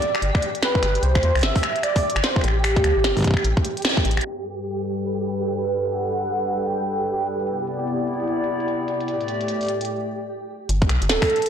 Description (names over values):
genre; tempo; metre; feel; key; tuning
IDM; 149 BPM; 4/4; swing 62% on 16ths; G major; A4 = 440 Hz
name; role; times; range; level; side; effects
warm velvety synth lead; melody; 0.0-7.3, 11.1-11.5 s; G4 to G5; -25 LUFS; right 2 dB; chorus, digital delay
glitchy drum kit; drums; 0.0-11.5 s; finger snaps, hi-hat, snare drum; -25 LUFS; equal; soft clipping on snare
flickering grainy texture; texture; 0.0-9.9 s; G4; -31 LUFS; right 3 dB; built-in reverb
metallic FM bass; bass; 0.2-4.2, 10.7-11.2 s; D1 to A2; -21 LUFS; equal; tube saturation
electronic kick drum; drums; 0.3-4.0, 10.8-11.3 s; none; -23 LUFS; equal; none
hollow soft pad; sustained chords; 4.2-9.9 s; G2 to D5; -25 LUFS; left 1 dB; chorus
room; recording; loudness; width
wet echo chamber reverb, RT60 1.4 s; blown-out, overdriven recording, overdrive, low-pass filter; -20 LUFS; side -8 dB against mid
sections
0.0-4.2 A section; 4.2-10.7 B section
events
band accent 3.8; drum fill 4.0; filter sweep 4.2-10.7; break 9.9-10.7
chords
0.0 G; 1.0 Cadd9; 2.6 A7(no3); 4.2 Gmaj9; 7.5 Cmaj9; 9.1 A7sus4; 10.7 Gadd9